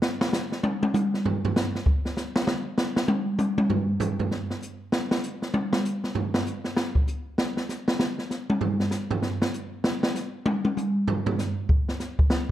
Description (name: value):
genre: jazz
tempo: 196 BPM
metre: 4/4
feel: swing 62% on 8ths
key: none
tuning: none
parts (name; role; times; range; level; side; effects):
- open jazz drum kit; drums; 0.0-12.4 s; hi-hat, kick drum, snare drum, toms; -24 LUFS; equal; none
room: moderate large studio reverb, RT60 1.1 s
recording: dark, warm production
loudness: -24 LUFS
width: side -13 dB against mid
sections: 0.0-2.5 A section; 2.5-12.3 A section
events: drum solo 0.0-12.3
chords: none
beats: | 0.02 0.33 0.64 0.94 | 1.25 1.55 1.86 2.17 | 2.47 2.78 3.09 3.39 | 3.70 4.01 4.31 4.62 | 4.92 5.23 5.54 5.84 | 6.15 6.46 6.76 7.07 | 7.38 7.69 7.99 8.30 | 8.61 8.92 9.22 9.53 | 9.84 10.15 10.46 10.76 | 11.07 11.38 11.69 11.99 | 12.30